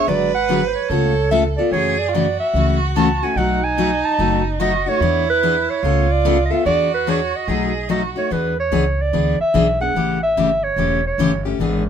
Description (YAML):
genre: acoustic string swing (jazz manouche)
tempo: 146 BPM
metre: 4/4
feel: swing 64% on 8ths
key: E mixolydian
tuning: A4 = 440 Hz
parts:
  - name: breathy clarinet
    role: melody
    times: 0.0-11.4 s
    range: B4 to A5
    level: -20 LUFS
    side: right 3 dB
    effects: none
  - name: rich violin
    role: second line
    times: 0.0-8.3 s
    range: D#4 to B4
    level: -23 LUFS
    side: right 7 dB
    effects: none
  - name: picked steel-string acoustic guitar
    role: accompaniment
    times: 0.0-11.8 s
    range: B2 to A4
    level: -20 LUFS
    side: left 5 dB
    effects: none
  - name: upright bass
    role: bass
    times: 0.1-11.9 s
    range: E1 to F#2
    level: -23 LUFS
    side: equal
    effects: none
room: light reverb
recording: minimal, uncompressed stereo recording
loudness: -16 LUFS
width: side -8 dB against mid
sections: 0.0-8.3 A section; 8.3-11.9 A section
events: none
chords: 0.1 G#m7b5; 0.9 C#aug7; 1.7 F#m7; 3.4 B7; 5.0 E7; 5.8 C#aug7; 6.7 E7; 7.5 B7; 8.3 E7; 10.0 A7